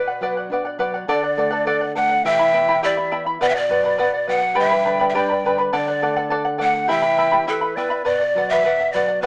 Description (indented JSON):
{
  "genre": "andean folk, Andean ensemble",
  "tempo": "103 BPM",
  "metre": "2/4",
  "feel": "straight",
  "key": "B minor",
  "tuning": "A4 = 440 Hz",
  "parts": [
    { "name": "breathy large pan pipes", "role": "melody", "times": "0.0-9.3 s", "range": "A4 to F#5", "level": "-19 LUFS", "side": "equal", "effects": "none" },
    { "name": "breathy bright large quena", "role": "second line", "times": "0.0-9.3 s", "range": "B4 to G5", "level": "-26 LUFS", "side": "equal", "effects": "none" },
    { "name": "charango", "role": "accompaniment", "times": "0.0-9.3 s", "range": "E4 to B5", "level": "-20 LUFS", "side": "equal", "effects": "none" },
    { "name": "nylon-string guitar", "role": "accompaniment", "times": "0.0-9.3 s", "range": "G2 to B4", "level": "-29 LUFS", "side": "equal", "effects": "none" }
  ],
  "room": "light reverb",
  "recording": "rough home demo mix, small speaker sound",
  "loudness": "-16 LUFS",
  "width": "side -31 dB against mid",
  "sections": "0.0-1.1 A section; 1.1-9.3 B section",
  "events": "none",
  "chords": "0.0 Bm; 1.1 D; 2.2 Em; 3.4 Bm; 4.6 G; 5.7 D; 6.9 Em; 8.1 Bm",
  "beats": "0.49 | 1.08 1.66 | 2.24 2.83 | 3.41 3.99 | 4.57 5.15 | 5.73 6.32 | 6.90 7.48 | 8.06 8.64 | 9.23"
}